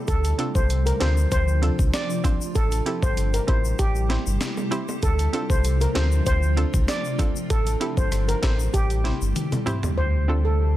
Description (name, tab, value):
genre	dancehall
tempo	97 BPM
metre	4/4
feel	straight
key	D minor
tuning	A4 = 440 Hz
part	granular cloud pad	sustained chords	0.0-10.8 s	C3 to G4	-31 LUFS	equal	built-in reverb, sidechain pumping
part	steel pan	melody	0.1-10.5 s	G4 to D5	-28 LUFS	equal	tape echo
part	sub bass with octave	bass	0.1-10.8 s	G1 to D2	-22 LUFS	equal	none
part	breakbeat sampler-style drum kit	drums	0.1-10.0 s	handclaps, hi-hat, kick drum, rim click, snare drum, toms	-25 LUFS	equal	soft clipping on snare
part	tube shaker and timbales	percussion	0.1-10.0 s	none	-38 LUFS	left 3 dB	none
part	hollow square pluck	accompaniment	0.4-10.4 s	C4 to C5	-30 LUFS	right 3 dB	chorus
room	little or no reverb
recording	dense, heavily limited modern master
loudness	-20 LUFS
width	side -14 dB against mid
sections	0.0-10.0 A section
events	drum fill 9.4-10.0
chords	0.1 Dm7; 2.6 Am7; 5.0 Dm7; 7.5 Am7; 10.0 Dm7